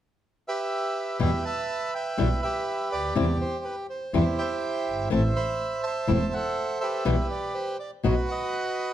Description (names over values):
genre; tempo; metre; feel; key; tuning
tango; 123 BPM; 4/4; rubato; E minor; A4 = 442 Hz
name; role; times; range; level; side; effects
bandoneon; melody; 0.5-8.9 s; E4 to B5; -28 LUFS; right 2 dB; none
flamenco guitar; accompaniment; 1.2-8.1 s; B2 to F#4; -27 LUFS; left 5 dB; none
clear double bass; bass; 1.2-8.3 s; E1 to E2; -27 LUFS; right 1 dB; none
room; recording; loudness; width
moderate large studio reverb, RT60 1.4 s; dark, warm production; -24 LUFS; side -11 dB against mid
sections
0.0-1.2 A section; 1.2-8.9 B section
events
none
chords
0.0 Em; 3.2 C/E; 5.1 Am; 7.1 Em/B; 8.1 B